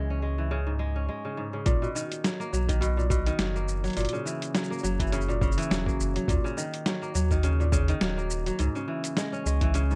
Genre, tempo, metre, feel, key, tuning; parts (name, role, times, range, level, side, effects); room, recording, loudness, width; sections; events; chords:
folktronica; 104 BPM; 4/4; swing 56% on 16ths; B major; A4 = 440 Hz
kora; arpeggios; 0.0-10.0 s; G#2 to C#4; -32 LUFS; equal; tape echo
warm sub bass; bass; 0.0-10.0 s; D#1 to D#2; -30 LUFS; equal; tube saturation
electronic kick drum; drums; 1.7-9.7 s; -30 LUFS; equal; overdrive
lo-fi sampler-style drum kit; drums; 1.7-10.0 s; hi-hat, shaker, snare drum; -34 LUFS; equal; overdrive
light reverb; dark, warm production; -28 LUFS; mono
0.0-1.7 A section; 1.7-10.0 B section
break 1.1-1.7
0.0 C#m; 1.7 Bmaj7; 4.0 F#7; 6.3 D#m7; 8.6 C#m